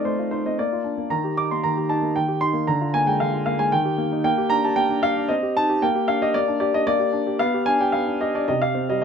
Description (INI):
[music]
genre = classical-period piano sonatina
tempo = 114 BPM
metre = 3/4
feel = straight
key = G minor from 4.2 s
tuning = A4 = 437 Hz
[part]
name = warm grand piano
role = solo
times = 0.0-9.0 s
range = C3 to D6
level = -19 LUFS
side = equal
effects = none
[sound]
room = moderate studio reverb, RT60 0.9 s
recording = minimal, uncompressed stereo recording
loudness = -19 LUFS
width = side -6 dB against mid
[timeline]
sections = 0.0-9.0 A section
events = none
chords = 0.0 F7/A; 0.6 Bb; 1.1 Eb; 2.7 Bb7/D; 3.7 Eb; 4.2 Gm/Bb; 5.3 Cm; 5.8 Gm/Bb; 7.4 G/B; 8.5 C5